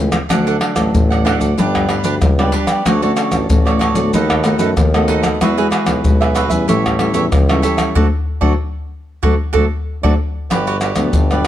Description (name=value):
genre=samba and choro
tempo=94 BPM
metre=4/4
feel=straight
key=D major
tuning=A4 = 440 Hz
part: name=nylon-string guitar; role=accompaniment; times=0.0-11.5 s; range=G2 to F#4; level=-19 LUFS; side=left 2 dB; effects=none
part: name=warm tuba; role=bass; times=0.0-11.5 s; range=G1 to F#2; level=-20 LUFS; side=right 1 dB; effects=none
part: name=maracas, surdo, pandeiro and tamborim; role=percussion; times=0.1-11.5 s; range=none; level=-16 LUFS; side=left 1 dB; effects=none
part: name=cavaquinho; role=accompaniment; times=0.3-11.5 s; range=D4 to F#5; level=-20 LUFS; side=right 6 dB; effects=none
room=light reverb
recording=dark, warm production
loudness=-13 LUFS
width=side -12 dB against mid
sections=0.0-10.5 A section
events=band accent 8.0-10.5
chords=0.3 D; 1.6 G; 2.9 Dmaj7; 4.1 B7/D#; 5.4 Eadd9; 6.7 A7; 8.0 D; 10.5 Gmaj7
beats=| 0.30 0.94 1.58 2.22 | 2.86 3.50 4.13 4.77 | 5.41 6.05 6.69 7.32 | 7.96 8.60 9.23 9.87 | 10.51 11.15